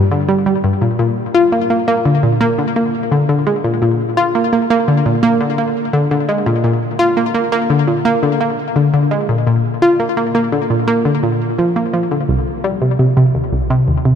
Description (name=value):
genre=ambient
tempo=85 BPM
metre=4/4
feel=straight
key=unclear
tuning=A4 = 438 Hz
part: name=analog pluck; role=solo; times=0.1-14.1 s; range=C2 to F4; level=-13 LUFS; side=equal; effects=chorus, ping-pong delay
room=wet huge ambient reverb, RT60 7.7 s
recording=none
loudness=-13 LUFS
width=side -8 dB against mid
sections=0.0-14.2 A section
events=none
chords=none